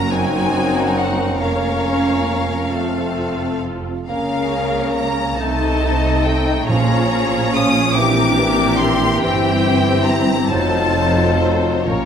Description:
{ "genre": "classical", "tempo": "46 BPM (dotted quarters)", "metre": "6/8", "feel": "rubato", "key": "Bb minor", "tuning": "A4 = 440 Hz", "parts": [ { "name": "warm symphonic violin section", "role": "melody", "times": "0.0-12.1 s", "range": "C5 to Eb6", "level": "-22 LUFS", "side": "left 3 dB", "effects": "none" }, { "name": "warm symphonic violin section", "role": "second line", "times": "0.0-12.1 s", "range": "Gb4 to Eb5", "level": "-24 LUFS", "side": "left 2 dB", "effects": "none" }, { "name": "dark symphonic viola section", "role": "accompaniment", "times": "0.0-12.1 s", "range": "Bb3 to G4", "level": "-24 LUFS", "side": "right 1 dB", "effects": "none" }, { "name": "dark French horn section", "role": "sustained chords", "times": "0.0-12.1 s", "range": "E3 to Eb4", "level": "-23 LUFS", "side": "left 3 dB", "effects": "none" }, { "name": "warm symphonic cello section", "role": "bass", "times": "0.0-12.1 s", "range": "F2 to Db3", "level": "-25 LUFS", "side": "right 2 dB", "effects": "none" }, { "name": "warm symphonic double bass section", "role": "bass", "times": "0.0-12.1 s", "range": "F1 to Db2", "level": "-23 LUFS", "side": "right 3 dB", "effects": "none" }, { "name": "clear clarinet", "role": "second line", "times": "0.1-12.1 s", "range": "C4 to Eb4", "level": "-26 LUFS", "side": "left 2 dB", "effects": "none" }, { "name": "dark bassoon", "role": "accompaniment", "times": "0.1-12.1 s", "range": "E3 to C4", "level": "-26 LUFS", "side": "right 1 dB", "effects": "none" }, { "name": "timpani", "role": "percussion", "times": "6.7-7.9, 11.9-12.1 s", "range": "Bb2", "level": "-25 LUFS", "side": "left 1 dB", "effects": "none" } ], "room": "wet scoring stage reverb, RT60 1.7 s", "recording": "none", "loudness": "-15 LUFS", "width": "side -8 dB against mid", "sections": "0.0-12.1 A section", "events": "none", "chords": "0.0 Gb; 1.4 Bbm/F; 2.7 F; 4.1 Bbm/Db; 5.4 Adim/C; 6.7 Bbm; 8.0 C7/Bb; 9.2 C/G; 10.5 F7b9" }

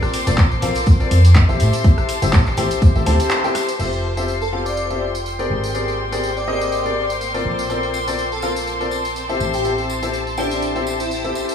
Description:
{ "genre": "piano house", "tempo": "123 BPM", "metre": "4/4", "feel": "swing 55% on 16ths", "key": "unclear", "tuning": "A4 = 441 Hz", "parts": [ { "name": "rich studio violin section", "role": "sustained chords", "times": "0.0-11.5 s", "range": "C5 to C6", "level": "-26 LUFS", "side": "left 2 dB", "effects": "sidechain pumping" }, { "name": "warm baby grand piano", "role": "riff", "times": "0.0-11.5 s", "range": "C4 to A5", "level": "-23 LUFS", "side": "left 2 dB", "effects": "sidechain pumping, tape echo" }, { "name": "punchy analog drum machine", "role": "drums", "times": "0.0-11.5 s", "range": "crash cymbal, handclaps, hi-hat, rim click, tambourine", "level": "-27 LUFS", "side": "equal", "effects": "none" }, { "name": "rich symphonic string section", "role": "texture", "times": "0.0-11.5 s", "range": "Bb3 to D6", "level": "-29 LUFS", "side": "left 1 dB", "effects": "sidechain pumping" }, { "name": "tambourine", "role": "percussion", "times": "0.1-3.8, 7.7-11.5 s", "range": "none", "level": "-35 LUFS", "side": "right 1 dB", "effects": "none" }, { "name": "solid FM bass", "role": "bass", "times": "0.3-11.3 s", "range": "F1 to Bb2", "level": "-20 LUFS", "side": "equal", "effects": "sidechain pumping" }, { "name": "electronic kick drum", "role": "drums", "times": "0.4-2.9 s", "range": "none", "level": "-14 LUFS", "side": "equal", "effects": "overdrive" }, { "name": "airy dreamy lead", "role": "melody", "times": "4.4-11.5 s", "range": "D4 to D5", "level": "-26 LUFS", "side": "left 1 dB", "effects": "chorus, tape echo" } ], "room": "light reverb, small room ambience", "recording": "none", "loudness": "-16 LUFS", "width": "side -8 dB against mid", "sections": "0.0-3.8 A section; 3.8-11.5 B section", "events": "break 3.3-3.8; band accent 3.3", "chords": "0.0 Bbmaj9; 1.6 Am7; 3.8 Fmaj9; 5.5 Abmaj9#11; 7.5 Bbmaj9; 9.4 Am7" }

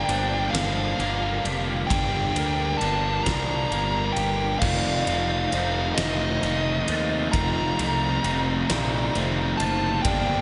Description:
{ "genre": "post-rock", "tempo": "44 BPM (dotted quarters)", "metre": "6/8", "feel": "straight", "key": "unclear", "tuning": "A4 = 442 Hz", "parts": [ { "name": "dark smooth lead guitar", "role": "melody", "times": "0.0-10.4 s", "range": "Eb5 to Bb5", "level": "-30 LUFS", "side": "equal", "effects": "overdrive, tape echo" }, { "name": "hollow soft pad", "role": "sustained chords", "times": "0.0-10.4 s", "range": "Eb4 to G5", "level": "-43 LUFS", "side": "equal", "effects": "none" }, { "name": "twangy electric guitar", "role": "arpeggios", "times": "0.0-10.4 s", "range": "F2 to G4", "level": "-37 LUFS", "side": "equal", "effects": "none" }, { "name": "vibraphone with soft mallets", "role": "arpeggios", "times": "0.0-10.4 s", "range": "Bb4 to Bb5", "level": "-39 LUFS", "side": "equal", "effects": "tape echo" }, { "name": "distorted electric guitar", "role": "riff", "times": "0.0-10.4 s", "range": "F2 to D4", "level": "-30 LUFS", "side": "equal", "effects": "distortion" }, { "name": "fuzz picked electric bass", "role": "bass", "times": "0.1-10.4 s", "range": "F1 to Eb2", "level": "-31 LUFS", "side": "equal", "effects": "overdrive" }, { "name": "huge arena drum kit", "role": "drums", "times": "0.1-10.3 s", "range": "crash cymbal, kick drum, ride cymbal, snare drum", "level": "-33 LUFS", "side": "equal", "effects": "none" }, { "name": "overdriven electric guitar", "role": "riff", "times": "4.6-10.4 s", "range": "F2 to Eb4", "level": "-33 LUFS", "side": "equal", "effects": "slapback echo" } ], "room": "moderate lush hall reverb, RT60 2.8 s", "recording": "big arena sound, nothing above 10.5 kHz", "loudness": "-24 LUFS", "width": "mono", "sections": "0.0-10.4 A section", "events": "none", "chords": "0.0 Gm7; 4.6 F7sus4" }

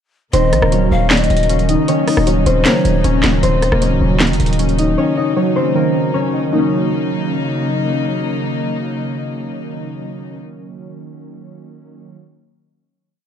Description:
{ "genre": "hip hop, trap", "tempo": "155 BPM", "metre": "4/4", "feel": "half-time", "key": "Eb dorian", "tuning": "A4 = 438 Hz", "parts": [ { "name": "concert harp", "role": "melody", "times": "0.3-9.2 s", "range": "Bb3 to Eb5", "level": "-19 LUFS", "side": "left 4 dB", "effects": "none" }, { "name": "breathy mellow large pan pipes", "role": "second line", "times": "0.3-3.4 s", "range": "Db5 to F5", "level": "-24 LUFS", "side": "left 6 dB", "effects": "digital delay" }, { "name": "warbly lo-fi synth keys", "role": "accompaniment", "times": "0.3-12.1 s", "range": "Eb3 to Db4", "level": "-20 LUFS", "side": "right 4 dB", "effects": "chorus" }, { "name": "dark chamber string section", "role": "sustained chords", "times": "0.3-10.4 s", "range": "Db3 to Eb4", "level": "-23 LUFS", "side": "left 3 dB", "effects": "none" }, { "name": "distorted 808-style bass", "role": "bass", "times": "0.3-5.0 s", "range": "Db1 to Bb1", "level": "-16 LUFS", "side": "equal", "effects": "distortion" }, { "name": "trap drum kit", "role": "drums", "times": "0.3-4.9 s", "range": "handclaps, hi-hat, rim click, snare drum", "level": "-18 LUFS", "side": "equal", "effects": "none" } ], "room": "light reverb, small room ambience", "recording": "dark, warm production", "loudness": "-13 LUFS", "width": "side -9 dB against mid", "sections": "0.3-6.5 hook; 6.5-9.6 final chord", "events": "none", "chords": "0.3 Ebm7" }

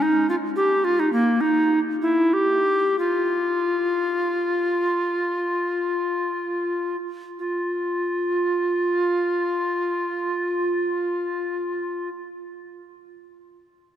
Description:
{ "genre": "classical, baroque-style fantasia for unaccompanied recorder", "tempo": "47-74 BPM (dotted quarters)", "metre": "12/8", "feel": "rubato", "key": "unclear", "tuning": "A4 = 441 Hz", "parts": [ { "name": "bright bass recorder", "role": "solo", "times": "0.0-12.1 s", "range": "Bb3 to G4", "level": "-21 LUFS", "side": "equal", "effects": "none" } ], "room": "wet cathedral reverb, RT60 4.6 s", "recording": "none", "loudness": "-21 LUFS", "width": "side -10 dB against mid", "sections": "0.0-7.4 A section; 7.4-11.9 B section", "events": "slowing down 0.6-7.4", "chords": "none" }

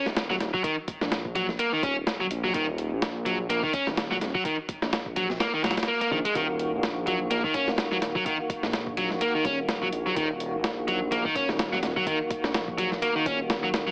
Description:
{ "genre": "breakbeat, breaks", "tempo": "126 BPM", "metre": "4/4", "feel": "swing 56% on 16ths", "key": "Eb minor", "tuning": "A4 = 440 Hz", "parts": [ { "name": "overdriven electric guitar", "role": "riff", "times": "0.0-13.9 s", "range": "Eb3 to Db4", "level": "-30 LUFS", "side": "equal", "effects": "vintage 12-bit sampler grit, dub echo" }, { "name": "dark detuned saw bass", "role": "bass", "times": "0.1-13.9 s", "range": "Eb1 to Bb1", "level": "-36 LUFS", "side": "equal", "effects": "none" }, { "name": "dusty soul sampler-style drum kit", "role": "drums", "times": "0.1-13.9 s", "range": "hi-hat, kick drum, snare drum", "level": "-32 LUFS", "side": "equal", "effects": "none" }, { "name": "percussive tonewheel organ", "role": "sustained chords", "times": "6.4-13.9 s", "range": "Eb3 to Gb4", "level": "-34 LUFS", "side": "equal", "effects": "chorus vibrato, slow rotary speaker, sidechain pumping" } ], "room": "moderate studio reverb, RT60 0.5 s", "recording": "heavily compressed radio sound, multiband compression, AM radio sound", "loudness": "-27 LUFS", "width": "mono", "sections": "0.0-13.9 A section", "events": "none", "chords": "0.0 Ebm" }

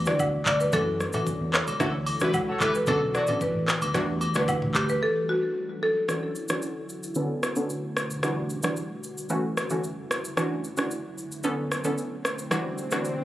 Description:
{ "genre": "afrobeats", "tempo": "112 BPM", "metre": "4/4", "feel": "straight", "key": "E dorian", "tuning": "A4 = 440 Hz", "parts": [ { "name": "analog pluck", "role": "accompaniment", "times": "0.0-13.1 s", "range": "D3 to A4", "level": "-30 LUFS", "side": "equal", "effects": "chorus, low-pass filter" }, { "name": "ethereal airy pad", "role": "sustained chords", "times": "0.0-13.2 s", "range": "E3 to C#5", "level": "-36 LUFS", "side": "equal", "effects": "ensemble chorus, built-in reverb, low-pass filter" }, { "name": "fingered electric bass", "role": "bass", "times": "0.0-5.0 s", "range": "A1 to F#2", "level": "-30 LUFS", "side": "equal", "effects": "none" }, { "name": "buzzing marimba with medium hard mallets", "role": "melody", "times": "0.1-5.9 s", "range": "F#4 to D5", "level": "-27 LUFS", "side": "equal", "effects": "tape echo" }, { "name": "afro-pop drum kit", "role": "drums", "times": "0.1-13.2 s", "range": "handclaps, hi-hat, kick drum, rim click, shaker, toms", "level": "-29 LUFS", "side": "equal", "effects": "none" }, { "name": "woodblock and agogo bells", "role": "percussion", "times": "0.2-4.9 s", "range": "none", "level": "-32 LUFS", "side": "equal", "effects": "none" }, { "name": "clear horn section", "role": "second line", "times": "1.8-3.2 s", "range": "F#3 to C#5", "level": "-32 LUFS", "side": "left 1 dB", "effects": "none" }, { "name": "swell", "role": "sound effects", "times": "12.2-13.2 s", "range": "none", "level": "-36 LUFS", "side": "left 1 dB", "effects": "none" } ], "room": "light reverb, digital ambience", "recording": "recorded on a phone in the room, club reverb, compression", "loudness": "-24 LUFS", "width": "side -14 dB against mid", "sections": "0.0-6.1 A section; 6.1-13.2 B section", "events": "drums muted 5.0-6.1; filter sweep 6.1-13.2; swell 12.2-13.2", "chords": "0.0 Em9; 0.7 F#m7; 1.8 Dmaj9; 2.9 Bm9; 3.9 Em9; 5.0 F#m7; 6.1 Dmaj9; 7.2 Bm9; 8.2 Em9; 9.3 F#m7; 10.4 Dmaj9; 11.4 Bm9; 12.5 Em9" }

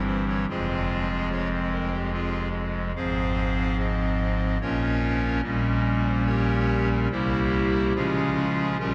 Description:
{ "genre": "classical, chorale-style piece for pipe organ", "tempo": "72 BPM", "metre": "3/4", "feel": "rubato", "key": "F minor", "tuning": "A4 = 440 Hz", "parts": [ { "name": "pipe organ, clarinet reed", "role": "solo", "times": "0.0-8.9 s", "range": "F1 to F5", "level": "-25 LUFS", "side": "equal", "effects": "none" } ], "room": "wet cathedral reverb, RT60 5.4 s", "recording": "dark, warm production", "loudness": "-25 LUFS", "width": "mono", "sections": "0.0-8.9 A section", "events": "none", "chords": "0.5 Fm; 3.0 Fm/Ab; 4.6 Bbm; 5.4 Gdim/Bb; 7.1 C7; 8.0 Db" }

